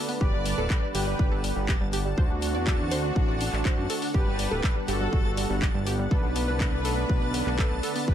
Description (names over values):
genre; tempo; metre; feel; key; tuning
progressive house; 122 BPM; 4/4; straight; G major; A4 = 439 Hz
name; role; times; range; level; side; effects
soft supersaw; melody; 0.0-8.1 s; D4 to D5; -32 LUFS; right 1 dB; sidechain pumping, dub echo
clear studio violin section; second line; 0.0-8.1 s; F#4 to D5; -38 LUFS; left 2 dB; sidechain pumping, dub echo
lush unison pad; sustained chords; 0.0-8.1 s; D3 to F#5; -35 LUFS; equal; chorus, sidechain pumping
wide unison pluck; arpeggios; 0.0-8.1 s; G3 to D5; -34 LUFS; right 2 dB; sidechain pumping, dub echo
backwards swelling texture; texture; 0.1-8.1 s; A5; -43 LUFS; left 1 dB; built-in reverb, sidechain pumping
house drum kit; drums; 0.1-8.1 s; handclaps, hi-hat; -34 LUFS; left 2 dB; none
fat analog bass; bass; 0.2-8.1 s; D1 to F#2; -30 LUFS; equal; sidechain pumping
electronic kick drum; drums; 0.2-8.1 s; none; -25 LUFS; equal; none
room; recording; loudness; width
little or no reverb; lossy compression artefacts; -24 LUFS; side -10 dB against mid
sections
0.0-8.1 A section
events
none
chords
0.2 Gmaj7; 2.2 D7; 4.1 Gmaj7; 6.1 Bm7